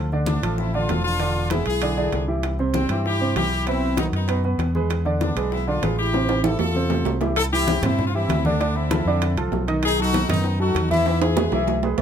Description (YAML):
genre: latin, salsa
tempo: 195 BPM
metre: 4/4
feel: straight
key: unclear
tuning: A4 = 444 Hz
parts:
  - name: warm concert grand piano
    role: accompaniment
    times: 0.0-12.0 s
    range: B2 to E5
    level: -25 LUFS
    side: right 2 dB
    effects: none
  - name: fingered electric bass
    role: bass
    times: 0.0-12.0 s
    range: E1 to G2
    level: -24 LUFS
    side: equal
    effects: none
  - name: bongos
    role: percussion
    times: 0.1-12.0 s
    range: none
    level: -32 LUFS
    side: left 8 dB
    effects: none
  - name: congas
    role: percussion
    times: 0.1-12.0 s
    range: none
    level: -30 LUFS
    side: left 1 dB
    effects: none
  - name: brilliant horn section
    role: melody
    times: 0.3-11.8 s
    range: G3 to A4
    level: -25 LUFS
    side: left 2 dB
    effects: none
  - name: timbales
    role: percussion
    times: 0.3-12.0 s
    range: none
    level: -28 LUFS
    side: right 8 dB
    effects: none
room: moderate studio reverb, RT60 0.6 s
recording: none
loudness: -19 LUFS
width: side -8 dB against mid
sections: 0.0-7.4 A section; 7.4-12.0 B section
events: drum fill 6.1-7.4, 11.1-12.0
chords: 0.0 Dmadd9; 1.2 E7b9; 2.4 Cmaj7; 3.7 B; 4.9 E7b9; 6.1 Am7; 7.4 Cadd9; 8.6 Dm; 9.8 B7; 11.1 E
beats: 0.28 0.58 0.89 | 1.20 1.51 1.82 2.13 | 2.44 2.74 3.05 3.36 | 3.67 3.98 4.29 4.59 | 4.90 5.21 5.52 5.83 | 6.14 6.45 6.75 7.06 | 7.37 7.68 7.99 8.29 | 8.60 8.91 9.22 9.52 | 9.83 10.14 10.45 10.76 | 11.06 11.37 11.68 11.99